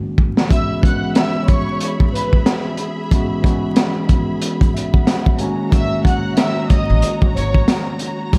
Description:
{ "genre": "hip hop, boom-bap hip-hop", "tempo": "92 BPM", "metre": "4/4", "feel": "swing 59% on 16ths", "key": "unclear", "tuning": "A4 = 440 Hz", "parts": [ { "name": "mellow tine electric piano", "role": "accompaniment", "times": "0.0-8.4 s", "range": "D#3 to G#5", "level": "-24 LUFS", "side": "equal", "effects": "cassette tape, high-pass filter, low-pass filter" }, { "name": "crunchy breakbeat drum kit", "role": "drums", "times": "0.2-8.4 s", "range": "hi-hat, kick drum, snare drum", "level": "-18 LUFS", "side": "equal", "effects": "none" }, { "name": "dark studio violin section", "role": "melody", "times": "0.5-7.5 s", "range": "B4 to F#6", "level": "-26 LUFS", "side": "equal", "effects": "high-pass filter, low-pass filter, slapback echo" }, { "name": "warm studio string section", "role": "sustained chords", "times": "0.5-8.4 s", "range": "F#4 to B5", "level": "-33 LUFS", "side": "equal", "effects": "high-pass filter, low-pass filter" }, { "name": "upright bass", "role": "bass", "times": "6.9-8.4 s", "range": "G#1 to A1", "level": "-20 LUFS", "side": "equal", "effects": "none" } ], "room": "little or no reverb", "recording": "dark, warm production, vinyl crackle", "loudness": "-17 LUFS", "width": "mono", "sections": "0.5-8.4 A section", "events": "drum fill 0.0-0.5", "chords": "0.0 G#9sus4; 0.5 F#9sus4; 5.4 G#9sus4", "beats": "| 0.50 1.16 1.81 2.46 | 3.11 3.77 4.42 5.07 | 5.72 6.37 7.03 7.68 | 8.33" }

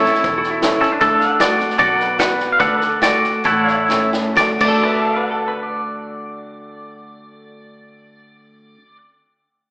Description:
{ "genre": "honky-tonk and classic country", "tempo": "125-156 BPM", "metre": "4/4", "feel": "straight", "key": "D major", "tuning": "A4 = 440 Hz", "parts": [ { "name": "twangy electric guitar", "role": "melody", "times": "0.0-8.7 s", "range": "C#4 to F#5", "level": "-16 LUFS", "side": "equal", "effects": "tremolo" }, { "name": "bright upright piano", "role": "accompaniment", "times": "0.0-8.8 s", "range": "E4 to D5", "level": "-24 LUFS", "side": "equal", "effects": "none" }, { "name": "picked steel-string acoustic guitar", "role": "accompaniment", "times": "0.0-8.8 s", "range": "A2 to F#4", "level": "-26 LUFS", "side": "equal", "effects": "none" }, { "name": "pedal steel guitar", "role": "sustained chords", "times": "0.0-9.0 s", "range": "A4 to F#5", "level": "-22 LUFS", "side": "equal", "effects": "none" }, { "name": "vintage muted fingered electric bass", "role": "bass", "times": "0.0-8.7 s", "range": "E1 to D2", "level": "-31 LUFS", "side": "equal", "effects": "none" }, { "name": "pedal steel guitar", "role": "second line", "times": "0.1-0.9, 4.7-9.0 s", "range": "E4 to D5", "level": "-24 LUFS", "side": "equal", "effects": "none" }, { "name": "vintage drum kit", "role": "drums", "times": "0.1-4.7 s", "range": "crash cymbal, hi-hat, kick drum, snare drum", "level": "-23 LUFS", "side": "equal", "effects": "none" } ], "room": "wet recital hall reverb, RT60 1.4 s", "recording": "recorded in a church or concert hall, small speaker sound", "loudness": "-14 LUFS", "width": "side -29 dB against mid", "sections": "0.0-1.0 A section; 1.0-4.4 B section; 4.4-8.2 C section", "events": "slowing down 1.0-4.4; drum fill 3.9-4.4", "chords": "0.0 A; 1.0 D; 1.8 Bm; 2.6 D; 3.4 A; 4.4 D", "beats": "0.24 0.63 | 1.01 1.40 1.79 2.19 | 2.59 3.01 3.44 3.89 | 4.36 4.84 5.33 5.81 | 6.29 6.77 7.25 7.73" }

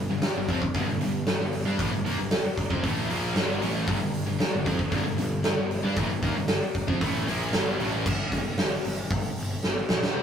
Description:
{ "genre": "hard rock", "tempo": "115 BPM", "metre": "4/4", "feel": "straight", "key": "G minor", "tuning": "A4 = 440 Hz", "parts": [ { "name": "high-gain distorted guitar", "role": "riff", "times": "0.0-8.1 s", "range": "G2 to D4", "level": "-34 LUFS", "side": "right 2 dB", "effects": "distortion" }, { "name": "overdriven electric guitar", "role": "riff", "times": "0.0-10.2 s", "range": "G2 to D4", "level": "-33 LUFS", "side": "left 4 dB", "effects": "spring reverb" }, { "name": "sludgy distorted guitar", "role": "riff", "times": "0.0-8.1 s", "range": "G2 to D4", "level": "-33 LUFS", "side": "right 5 dB", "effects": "overdrive" }, { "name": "fuzz picked electric bass", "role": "bass", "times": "0.0-10.1 s", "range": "G1 to G2", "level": "-32 LUFS", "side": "left 1 dB", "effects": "overdrive" }, { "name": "huge arena drum kit", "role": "drums", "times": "0.2-10.1 s", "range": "crash cymbal, hi-hat, kick drum, snare drum", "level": "-27 LUFS", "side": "equal", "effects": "none" } ], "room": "moderate studio ambience, RT60 0.5 s", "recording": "rough rehearsal-room recording, warm saturation", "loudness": "-24 LUFS", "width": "side -8 dB against mid", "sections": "0.0-8.1 A section; 8.1-10.2 B section", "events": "drum fill 9.6-10.2", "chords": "0.0 Gm; 8.1 N.C.", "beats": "0.23 0.75 1.28 | 1.80 2.32 2.84 3.36 | 3.89 4.41 4.93 5.45 | 5.97 6.50 7.02 7.54 | 8.06 8.59 9.11 9.63 | 10.15" }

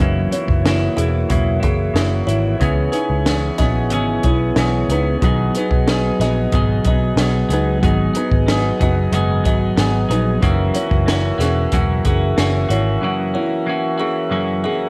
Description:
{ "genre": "indie pop, bedroom pop", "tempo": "92 BPM", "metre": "4/4", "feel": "straight", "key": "unclear", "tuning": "A4 = 445 Hz", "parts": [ { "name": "percussive tonewheel organ", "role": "accompaniment", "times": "0.0-14.9 s", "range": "A#3 to E5", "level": "-26 LUFS", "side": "equal", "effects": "slow rotary speaker, cassette tape" }, { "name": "semi-hollow electric guitar", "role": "accompaniment", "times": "0.0-14.9 s", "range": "F#2 to G#4", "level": "-24 LUFS", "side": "equal", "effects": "subtle chorus, warbly pitch drift" }, { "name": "vintage muted picked electric bass", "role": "bass", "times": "0.0-13.0 s", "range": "E1 to C#2", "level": "-21 LUFS", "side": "equal", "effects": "none" }, { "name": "compact cocktail drum kit", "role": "drums", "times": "0.0-12.9 s", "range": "hi-hat, kick drum, snare drum", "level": "-23 LUFS", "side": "equal", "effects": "none" }, { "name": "kalimba", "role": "second line", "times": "0.3-14.8 s", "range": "D#4 to E5", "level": "-28 LUFS", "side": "equal", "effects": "subtle chorus, slapback echo" } ], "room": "moderate echo chamber reverb, RT60 2.0 s", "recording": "none", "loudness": "-17 LUFS", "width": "mono", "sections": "0.0-14.9 A section", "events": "none", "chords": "0.0 F#7; 2.6 C#m7; 5.2 B6; 7.8 G#m7; 10.4 F#7", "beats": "0.65 1.30 1.95 | 2.61 3.26 3.91 4.57 | 5.22 5.87 6.52 7.17 | 7.83 8.48 9.13 9.78 | 10.43 11.08 11.73 12.38 | 13.03 13.68 14.33" }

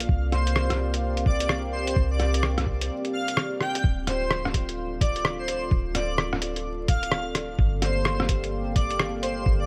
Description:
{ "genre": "future garage", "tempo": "128 BPM", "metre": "4/4", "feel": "swing 62% on 16ths", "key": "D minor", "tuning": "A4 = 442 Hz", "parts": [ { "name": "dark analog pad", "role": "sustained chords", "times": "0.0-9.7 s", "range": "Bb3 to F5", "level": "-34 LUFS", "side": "equal", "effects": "chorus, sidechain pumping" }, { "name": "soft 808-style bass", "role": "bass", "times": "0.0-9.7 s", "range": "D1 to C2", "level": "-31 LUFS", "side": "equal", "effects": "sidechain pumping" }, { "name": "lo-fi sampler-style drum kit", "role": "drums", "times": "0.0-9.3 s", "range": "hi-hat, rim click", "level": "-30 LUFS", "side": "equal", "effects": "none" }, { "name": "electronic kick drum", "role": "drums", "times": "0.1-9.6 s", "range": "none", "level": "-25 LUFS", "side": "equal", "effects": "none" }, { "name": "airy dreamy lead", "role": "melody", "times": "0.3-9.7 s", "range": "C5 to G5", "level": "-33 LUFS", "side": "equal", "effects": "chorus, cassette tape, tape echo" } ], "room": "light reverb", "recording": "vinyl crackle", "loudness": "-26 LUFS", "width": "mono", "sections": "0.0-3.8 A section; 3.8-9.7 A section", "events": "break 2.9-3.8", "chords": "0.1 C9sus4; 3.8 Dm7; 7.6 Gm9", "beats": "| 0.09 0.56 1.03 1.50 | 1.96 2.43 2.90 3.37 | 3.84 4.31 4.78 5.25 | 5.71 6.18 6.65 7.12 | 7.59 8.06 8.53 8.99 | 9.46" }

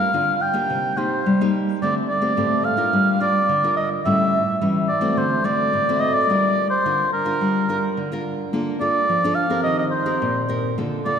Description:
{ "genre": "samba", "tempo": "107 BPM", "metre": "4/4", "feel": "straight", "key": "G minor", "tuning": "A4 = 439 Hz", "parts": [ { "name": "warm oboe", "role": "melody", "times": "0.0-11.2 s", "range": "Bb4 to G5", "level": "-20 LUFS", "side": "equal", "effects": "none" }, { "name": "nylon-string guitar", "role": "accompaniment", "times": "0.0-11.2 s", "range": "A2 to Bb4", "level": "-22 LUFS", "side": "equal", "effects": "none" } ], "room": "wet church reverb, RT60 2.8 s", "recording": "recorded in a church or concert hall", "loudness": "-18 LUFS", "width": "side -7 dB against mid", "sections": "0.0-8.5 A section; 8.5-11.2 B section", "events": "none", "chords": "0.0 Gm7; 0.7 Cm7; 1.8 D7sus4; 2.9 Gm7; 4.1 A7; 5.2 D7; 6.3 Gm7; 8.5 Bbmaj7; 9.7 Eb6", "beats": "0.14 0.70 1.26 | 1.82 2.38 2.94 3.50 | 4.06 4.62 5.18 5.74 | 6.30 6.86 7.42 7.98 | 8.54 9.10 9.66 10.22 | 10.78" }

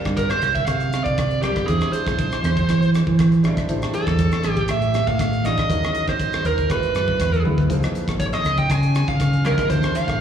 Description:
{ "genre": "electric jazz fusion", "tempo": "120 BPM", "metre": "4/4", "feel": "straight", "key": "unclear", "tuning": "A4 = 444 Hz", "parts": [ { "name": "dark concert grand piano", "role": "accompaniment", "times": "0.0-10.2 s", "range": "Eb3 to Eb5", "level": "-28 LUFS", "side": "right 1 dB", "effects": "slapback echo" }, { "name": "crisp fusion drum kit", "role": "drums", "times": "0.0-10.2 s", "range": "hi-hat, kick drum, rim click, toms", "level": "-25 LUFS", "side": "equal", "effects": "none" }, { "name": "modern bright fingered electric bass", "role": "bass", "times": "0.1-10.2 s", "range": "Ab1 to E3", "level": "-20 LUFS", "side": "right 1 dB", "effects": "none" }, { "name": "bluesy overdriven lead guitar", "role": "melody", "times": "0.2-10.2 s", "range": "G4 to Ab5", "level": "-23 LUFS", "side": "right 2 dB", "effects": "distortion, slapback echo, analog delay" } ], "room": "light reverb", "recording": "live gig heard through the venue's PA, recital hall reverb", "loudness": "-18 LUFS", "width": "side -8 dB against mid", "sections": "0.0-10.2 A section", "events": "drum fill 7.4", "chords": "0.0 C9sus4; 1.7 E7b13; 3.7 Am7; 5.7 Ebm7; 6.7 Ab7alt; 7.7 Dbmaj9; 9.7 Dm11", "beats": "0.18 0.68 1.18 | 1.68 2.19 2.69 3.19 | 3.69 4.19 4.69 5.19 | 5.69 6.19 6.69 7.20 | 7.70 8.20 8.70 9.20 | 9.70 10.20" }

